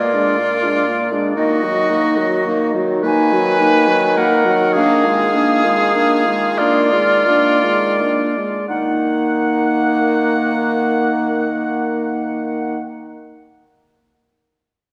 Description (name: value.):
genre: classical, slow romantic movement for wind quintet.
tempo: 26-41 BPM (dotted quarters).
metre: 6/8.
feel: rubato.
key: Eb minor.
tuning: A4 = 439 Hz.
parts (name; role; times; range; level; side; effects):
concert flute; melody; 0.0-12.8 s; D5 to Ab5; -22 LUFS; equal; none.
clear oboe; second line; 0.0-12.8 s; F4 to Gb5; -23 LUFS; equal; none.
clear French horn; accompaniment; 0.0-12.8 s; Gb3 to Bb3; -24 LUFS; equal; none.
mellow clarinet; accompaniment; 0.0-12.8 s; D4 to Gb4; -24 LUFS; equal; none.
mellow bassoon; bass; 0.0-12.8 s; Bb2 to Eb3; -24 LUFS; equal; none.
room: wet scoring stage reverb, RT60 1.9 s.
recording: heard from further back in the room.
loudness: -16 LUFS.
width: mono.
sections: 0.0-8.7 A section; 8.7-12.5 B section.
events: slowing down 0.0-8.7.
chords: 0.0 Bb7; 1.4 Ebm; 4.8 Bb7/Eb; 8.7 Ebm.